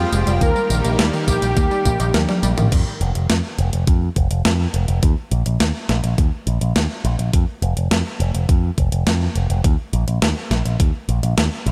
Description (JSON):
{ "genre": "synthwave", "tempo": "104 BPM", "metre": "4/4", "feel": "straight", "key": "unclear", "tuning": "A4 = 440 Hz", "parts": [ { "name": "soft supersaw", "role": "melody", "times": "0.0-2.4 s", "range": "F4 to Bb4", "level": "-26 LUFS", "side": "equal", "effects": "digital delay, slapback echo" }, { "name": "lush unison pad", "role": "sustained chords", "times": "0.0-2.7 s", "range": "Eb3 to G4", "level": "-30 LUFS", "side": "equal", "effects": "chorus, sidechain pumping" }, { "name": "analog pluck", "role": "arpeggios", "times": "0.0-2.7 s", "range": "Eb3 to Bb4", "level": "-29 LUFS", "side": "equal", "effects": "chorus, delay, slapback echo" }, { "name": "picked electric bass with an envelope filter", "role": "bass", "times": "0.0-11.7 s", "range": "F1 to F2", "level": "-21 LUFS", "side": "equal", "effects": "none" }, { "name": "clean 12-bit digital drum machine", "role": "drums", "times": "0.1-11.7 s", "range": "crash cymbal, hi-hat, snare drum, tambourine, toms", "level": "-25 LUFS", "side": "equal", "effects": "overdrive, small room ambience, slapback echo" }, { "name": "electronic kick drum", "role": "drums", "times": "0.4-10.9 s", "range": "none", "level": "-20 LUFS", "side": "equal", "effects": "overdrive, small room ambience" } ], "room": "light reverb, digital ambience", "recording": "faint mains hum", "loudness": "-19 LUFS", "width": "mono", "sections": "0.0-2.7 A section; 2.7-11.7 B section", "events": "drum fill 2.1-2.7", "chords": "0.4 Eb; 2.7 N.C.; 5.0 Bbsus4; 7.3 N.C.; 9.6 Eb5" }